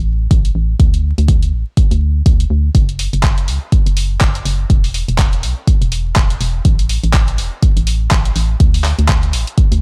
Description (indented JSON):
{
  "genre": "deep house",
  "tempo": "123 BPM",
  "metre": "4/4",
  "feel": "swing 58% on 16ths",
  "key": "unclear",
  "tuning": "A4 = 439 Hz",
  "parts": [
    { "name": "organ-like FM bass", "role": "bass", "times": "0.0-9.8 s", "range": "E1 to D2", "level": "-18 LUFS", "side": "equal", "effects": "sidechain pumping" },
    { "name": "deep house drum kit", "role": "drums", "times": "0.3-9.8 s", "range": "handclaps, hi-hat", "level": "-24 LUFS", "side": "equal", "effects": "none" },
    { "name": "electronic kick drum", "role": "drums", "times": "0.3-9.7 s", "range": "none", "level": "-14 LUFS", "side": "equal", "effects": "none" }
  ],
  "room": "little or no reverb",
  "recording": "dry, gritty hardware recording, transformer saturation, vinyl crackle",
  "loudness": "-14 LUFS",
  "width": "mono",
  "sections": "0.0-9.8 A section",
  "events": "none",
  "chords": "none",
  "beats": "0.31 | 0.80 1.28 1.77 2.26 | 2.75 3.23 3.72 4.21 | 4.70 5.19 5.67 6.16 | 6.65 7.14 7.63 8.11 | 8.60 9.09 9.58"
}